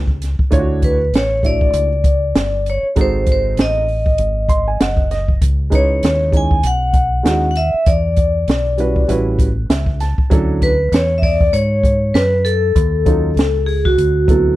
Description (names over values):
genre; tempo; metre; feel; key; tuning
hip hop, jazz-hop; 98 BPM; 4/4; swing 58% on 16ths; unclear; A4 = 439 Hz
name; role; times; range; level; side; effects
deep dub fingered electric bass; bass; 0.0-14.6 s; F#1 to G#2; -18 LUFS; equal; transformer saturation
open jazz drum kit; drums; 0.1-14.5 s; hi-hat, kick drum, snare drum; -17 LUFS; equal; none
dark concert grand piano; accompaniment; 0.5-14.5 s; F#3 to B#5; -21 LUFS; right 3 dB; none
vibraphone with hard mallets; melody; 0.8-14.6 s; F#4 to G#5; -17 LUFS; left 1 dB; none
room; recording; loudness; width
small room ambience; dry, close 1970s-style studio recording; -13 LUFS; side -16 dB against mid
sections
0.0-14.6 A section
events
grand piano fill 4.2-5.4, 9.4-10.3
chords
0.0 N.C.; 0.5 Dmaj9; 3.0 G#7b9; 5.4 C#m9; 7.9 Em9; 9.1 A13; 10.3 Dmaj9; 12.8 D#m7b5; 14.0 D13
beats
| 0.52 1.13 1.74 2.35 | 2.96 3.58 4.19 4.80 | 5.41 6.03 6.64 7.25 | 7.86 8.48 9.09 9.70 | 10.31 10.93 11.54 12.15 | 12.76 13.37 13.99